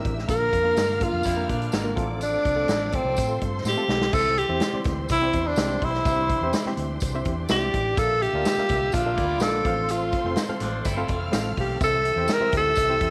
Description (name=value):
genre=uptempo 1960s-style soul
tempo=125 BPM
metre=4/4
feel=straight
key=C mixolydian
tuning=A4 = 440 Hz
part: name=warm symphonic violin section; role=second line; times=0.0-13.1 s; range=C5 to F6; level=-38 LUFS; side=equal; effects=none
part: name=barky reed electric piano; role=accompaniment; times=0.0-13.1 s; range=A2 to G5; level=-34 LUFS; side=equal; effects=overdrive, fast tremolo
part: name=bright tonewheel organ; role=sustained chords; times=0.0-13.1 s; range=D3 to A4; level=-38 LUFS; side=equal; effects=none
part: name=vintage muted fingered electric bass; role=bass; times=0.1-13.1 s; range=F1 to Bb2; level=-33 LUFS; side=equal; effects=none
part: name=swinging big-band drum kit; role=drums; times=0.1-13.1 s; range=crash cymbal, hi-hat, kick drum, snare drum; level=-30 LUFS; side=equal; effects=none
part: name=breathy tenor saxophone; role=melody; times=0.3-13.1 s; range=C4 to Bb4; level=-26 LUFS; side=equal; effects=none
part: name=tambourine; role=percussion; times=0.3-12.9 s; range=none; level=-44 LUFS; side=equal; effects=none
part: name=electric guitar at the edge of break-up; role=riff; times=1.2-2.2, 8.9-11.8 s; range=D3 to E4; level=-37 LUFS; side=equal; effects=phaser
room=moderate plate reverb, RT60 1.1 s, small room ambience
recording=none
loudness=-24 LUFS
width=mono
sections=0.0-4.1 A section; 4.1-13.1 B section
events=tenor saxophone solo 0.0-4.1; drum fill 3.7-4.1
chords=0.3 Bb; 2.0 F/A; 4.1 C; 8.0 Bb; 9.7 F; 11.8 C